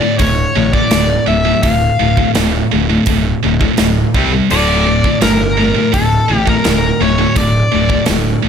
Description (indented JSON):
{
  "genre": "heavy metal",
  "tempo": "84 BPM",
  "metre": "4/4",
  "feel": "straight",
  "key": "unclear",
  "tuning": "A4 = 438 Hz",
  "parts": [
    { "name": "smooth overdriven lead guitar", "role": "melody", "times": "0.0-8.0 s", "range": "A4 to F5", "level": "-17 LUFS", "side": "left 2 dB", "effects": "tape echo" },
    { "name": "distorted electric guitar", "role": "riff", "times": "0.0-8.5 s", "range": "D2 to C4", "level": "-17 LUFS", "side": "left 10 dB", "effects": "distortion" },
    { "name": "heavy high-gain guitar", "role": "riff", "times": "0.0-8.5 s", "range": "D2 to C4", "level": "-17 LUFS", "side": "right 11 dB", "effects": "distortion" },
    { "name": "fuzz picked electric bass", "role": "bass", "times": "0.2-8.5 s", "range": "D1 to C2", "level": "-18 LUFS", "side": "equal", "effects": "overdrive" },
    { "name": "big rock drum kit", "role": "drums", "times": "0.2-8.2 s", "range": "hi-hat, kick drum, snare drum", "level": "-18 LUFS", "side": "right 1 dB", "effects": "none" }
  ],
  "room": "little or no reverb",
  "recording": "none",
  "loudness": "-10 LUFS",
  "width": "side -7 dB against mid",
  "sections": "0.0-8.5 A section",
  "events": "none",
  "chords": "0.0 D5; 4.1 C5; 4.5 D5"
}